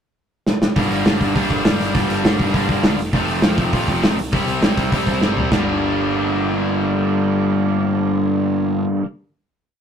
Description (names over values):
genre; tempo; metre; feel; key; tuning
punk rock; 202 BPM; 4/4; straight; G dorian; A4 = 439 Hz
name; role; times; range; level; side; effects
loose indie drum kit; drums; 0.5-5.6 s; hi-hat, kick drum, snare drum, toms; -18 LUFS; equal; none
biting overdriven guitar; riff; 0.8-9.1 s; F2 to C4; -20 LUFS; left 5 dB; none
overdriven electric guitar; riff; 0.8-9.1 s; F2 to E4; -22 LUFS; right 7 dB; none
fuzz picked electric bass; bass; 0.8-8.8 s; F1 to D2; -26 LUFS; equal; overdrive
room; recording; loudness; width
light reverb; rough rehearsal-room recording, tube saturation; -16 LUFS; side -8 dB against mid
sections
0.0-0.8 pickup bar; 0.8-5.5 verse; 5.5-7.9 final chord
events
drum fill 0.5, 5.2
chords
0.0 N.C.; 0.8 Gm; 3.0 F; 4.2 C; 5.5 Gm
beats
0.17 0.47 | 0.76 1.06 1.35 1.65 | 1.95 2.24 2.54 2.83 | 3.13 3.43 3.73 4.02 | 4.32 4.62 4.92 5.21 | 5.51 5.81 6.11 6.41 | 6.70 7.00 7.30 7.59